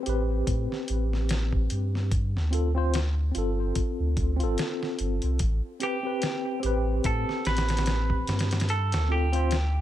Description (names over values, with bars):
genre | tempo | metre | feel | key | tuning
trip hop | 73 BPM | 4/4 | swing 57% on 16ths | A minor | A4 = 440 Hz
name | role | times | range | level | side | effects
tine electric piano | accompaniment | 0.0-9.6 s | C4 to C5 | -31 LUFS | left 1 dB | overdrive, fast stereo tremolo, tape echo
warm sub bass | bass | 0.1-9.8 s | G1 to A2 | -26 LUFS | equal | none
dusty soul sampler-style drum kit | drums | 0.1-9.7 s | hi-hat, kick drum, snare drum | -30 LUFS | equal | none
semi-hollow electric guitar | melody | 5.8-9.8 s | G4 to B4 | -31 LUFS | right 3 dB | dub echo
room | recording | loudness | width
digital ambience | none | -24 LUFS | side -12 dB against mid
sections
0.0-9.8 A section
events
none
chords
0.0 Am7; 2.1 G7sus4; 5.4 Am7; 8.7 G7sus4